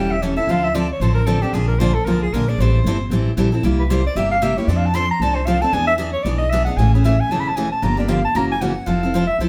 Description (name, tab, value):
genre	acoustic string swing (jazz manouche)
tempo	229 BPM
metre	4/4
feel	swing 57% on 8ths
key	unclear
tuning	A4 = 440 Hz
part	breathy soprano saxophone	second line	0.0-9.4 s	G4 to C6	-24 LUFS	equal	none
part	picked steel-string acoustic guitar	accompaniment	0.0-9.5 s	C3 to A4	-23 LUFS	equal	none
part	upright bass	bass	0.0-9.5 s	E1 to F2	-22 LUFS	equal	none
room	moderate studio reverb, RT60 0.7 s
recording	band playing live in one room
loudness	-18 LUFS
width	mono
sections	0.0-6.8 A section; 6.8-9.5 A section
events	soprano saxophone solo 0.0-9.5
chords	0.5 Dm7; 1.5 Bb9; 2.6 Am7; 3.6 C7; 4.7 F6; 5.7 E7; 6.8 Amaj7; 7.8 Gm7; 8.3 F#7; 8.9 Fmaj7